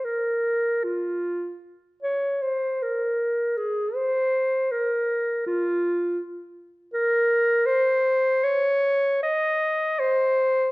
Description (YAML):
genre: classical, free, expressive piece for unaccompanied clarinet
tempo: free time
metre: none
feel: none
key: unclear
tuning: A4 = 440 Hz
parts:
  - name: clear clarinet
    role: solo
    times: 0.0-10.7 s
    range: F4 to Eb5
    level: -21 LUFS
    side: equal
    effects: none
room: wet recital hall reverb, RT60 1.3 s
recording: worn, warbling old tape, cassette tape, warbly pitch drift, nothing above 10.4 kHz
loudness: -21 LUFS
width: side -22 dB against mid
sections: 0.0-10.7 A section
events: none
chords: none